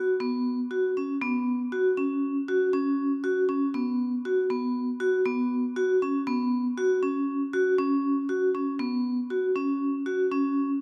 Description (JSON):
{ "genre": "contemporary instrumental, contemporary", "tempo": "119 BPM", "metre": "5/4", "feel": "straight", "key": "unclear", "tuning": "A4 = 440 Hz", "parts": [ { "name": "vibraphone with medium hard mallets", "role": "solo", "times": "0.0-10.7 s", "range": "B3 to F#4", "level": "-27 LUFS", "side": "equal", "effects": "none" } ], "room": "moderate recital hall reverb, RT60 1.7 s", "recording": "close, detailed microphones", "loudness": "-27 LUFS", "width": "mono", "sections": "0.0-10.8 A section", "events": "none", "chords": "none" }